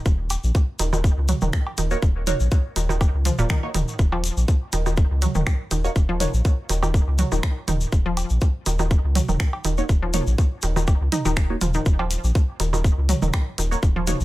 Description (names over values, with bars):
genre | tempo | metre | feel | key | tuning
minimal techno | 122 BPM | 4/4 | swing 53% on 16ths | Eb minor | A4 = 440 Hz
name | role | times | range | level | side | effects
round analog bass | bass | 0.1-14.2 s | Eb1 to Db2 | -23 LUFS | equal | sidechain pumping
electronic kick drum | drums | 0.1-13.9 s | none | -19 LUFS | equal | overdrive, studio reverb
tube shaker | percussion | 0.1-14.2 s | none | -33 LUFS | left 4 dB | none
minimal click drum kit | drums | 0.3-14.2 s | finger snaps, hi-hat | -28 LUFS | right 1 dB | overdrive, studio reverb
electronic cowbell, percussion blips and toms | percussion | 0.3-14.2 s | none | -30 LUFS | right 4 dB | overdrive, studio reverb, dub echo
resonant blip pluck | riff | 0.8-14.0 s | Bb2 to Eb4 | -28 LUFS | equal | chorus, sidechain pumping, tape echo
filtered dub chord stab | stabs | 1.9-6.3, 9.8-14.2 s | Bb3 to Db5 | -30 LUFS | right 2 dB | phaser, lush chorus, dub echo
room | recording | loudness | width
little or no reverb | none | -19 LUFS | side -17 dB against mid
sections
0.0-14.2 A section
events
none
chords
0.0 Eb7(no3)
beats
| 0.06 0.55 1.04 1.53 | 2.02 2.52 3.01 3.50 | 3.99 4.48 4.97 5.47 | 5.96 6.45 6.94 7.43 | 7.93 8.42 8.91 9.40 | 9.89 10.38 10.88 11.37 | 11.86 12.35 12.84 13.34 | 13.83